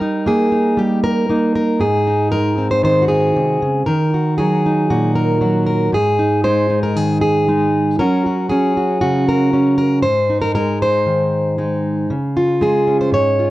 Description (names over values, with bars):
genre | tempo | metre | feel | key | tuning
folk, solo fingerstyle acoustic guitar | 117 BPM | 4/4 | straight | unclear | A4 = 439 Hz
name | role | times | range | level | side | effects
fingerpicked plugged-in steel-string acoustic guitar | solo | 0.0-13.5 s | Ab2 to Db5 | -14 LUFS | equal | none
room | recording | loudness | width
light reverb | worn, warbling old tape, cassette tape, warbly pitch drift | -14 LUFS | side -16 dB against mid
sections
0.0-12.1 A section; 12.1-13.5 B section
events
none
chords
0.0 Eb/G; 1.8 Ab; 3.9 Ebm; 5.9 Ab5; 8.0 Gb; 10.0 Ab; 12.1 Db